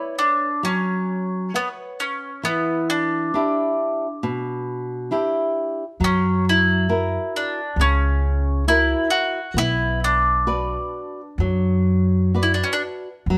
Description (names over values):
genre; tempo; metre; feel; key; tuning
fado-style ballad; 67 BPM; 4/4; rubato; B harmonic minor; A4 = 440 Hz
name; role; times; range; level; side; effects
bowl-back mandolin; melody; 0.0-12.8 s; B3 to F#4; -25 LUFS; equal; none
flamenco guitar; accompaniment; 0.0-13.4 s; B2 to F#5; -26 LUFS; equal; none
upright bass; bass; 6.0-13.4 s; B1 to F#2; -24 LUFS; equal; none
room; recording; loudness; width
light reverb; band playing live in one room; -21 LUFS; mono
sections
0.0-13.3 A section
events
none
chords
0.0 Bmadd9; 2.4 Em7; 6.0 F#7; 9.6 Bm